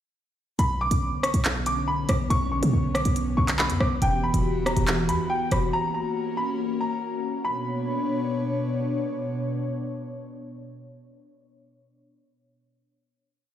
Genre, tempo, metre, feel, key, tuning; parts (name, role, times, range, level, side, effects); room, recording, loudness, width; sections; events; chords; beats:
hip hop, drill; 140 BPM; 4/4; half-time; B harmonic minor; A4 = 440 Hz
clear upright piano; melody; 0.6-8.7 s; G5 to D6; -29 LUFS; left 1 dB
airy breathy pad; sustained chords; 0.6-11.3 s; B2 to C#5; -28 LUFS; left 1 dB; chorus
short 808-style bass; bass; 0.6-5.7 s; E1 to B2; -25 LUFS; equal
drill drum kit; drums; 0.6-5.6 s; handclaps, hi-hat, rim click; -27 LUFS; equal
light reverb; played on a big sound system in a bare room, stone room reverb; -23 LUFS; side -10 dB against mid
0.6-7.4 hook; 7.4-10.9 final chord
0.6 Bmadd9; 4.0 Emadd9; 5.7 F#; 7.4 Bmadd9
| 0.59 1.02 1.45 1.88 | 2.30 2.73 3.16 3.59 | 4.02 4.45 4.88 5.30 | 5.73 6.16 6.59 7.02 | 7.45 7.88 8.30 8.73 | 9.16 9.59 10.02 10.45